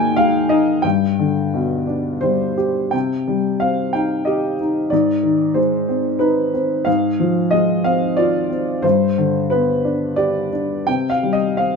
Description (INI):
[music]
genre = classical, lyrical solo piano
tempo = 84-95 BPM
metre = 3/4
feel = rubato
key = C harmonic minor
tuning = A4 = 440 Hz
[part]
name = dark baby grand piano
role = solo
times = 0.0-11.8 s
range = G2 to Ab5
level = -16 LUFS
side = left 1 dB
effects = none
[sound]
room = moderate small room reverb, RT60 0.5 s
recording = minimal, uncompressed stereo recording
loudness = -16 LUFS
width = side -5 dB against mid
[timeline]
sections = 0.0-2.9 A section; 2.9-11.8 B section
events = none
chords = 0.0 Absus2; 0.8 G; 2.9 Cm; 4.9 Ab; 6.9 Fm/Ab; 8.8 G; 10.9 Cm